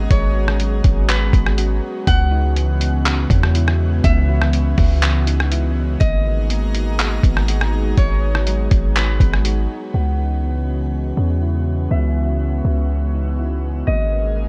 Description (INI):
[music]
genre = hip hop, atmospheric cloud-rap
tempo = 122 BPM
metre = 4/4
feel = half-time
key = unclear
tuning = A4 = 445 Hz
[part]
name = airy breathy pad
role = sustained chords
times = 0.0-14.5 s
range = C#3 to A#5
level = -28 LUFS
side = equal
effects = chorus, sidechain pumping, low-pass filter
[part]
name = soft electric-piano-like synth keys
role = arpeggios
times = 0.0-14.5 s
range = F#3 to F#4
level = -33 LUFS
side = equal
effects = chorus, low-pass filter, tape echo
[part]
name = warm 808-style bass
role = bass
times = 0.0-14.5 s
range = G#1 to E2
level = -20 LUFS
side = equal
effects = none
[part]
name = concert harp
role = melody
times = 0.1-14.5 s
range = B4 to F#5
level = -31 LUFS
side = equal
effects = low-pass filter, tape echo
[part]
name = lo-fi sampler-style drum kit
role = drums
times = 0.1-9.6 s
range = handclaps, hi-hat, kick drum, rim click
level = -21 LUFS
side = equal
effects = none
[sound]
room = digital ambience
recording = none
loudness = -18 LUFS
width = mono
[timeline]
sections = 0.0-9.9 A section; 9.9-14.5 B section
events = filter sweep 9.9-14.5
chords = 0.0 G#m9; 2.1 C#m11; 6.0 G#m9; 9.9 C#m11; 13.9 G#m9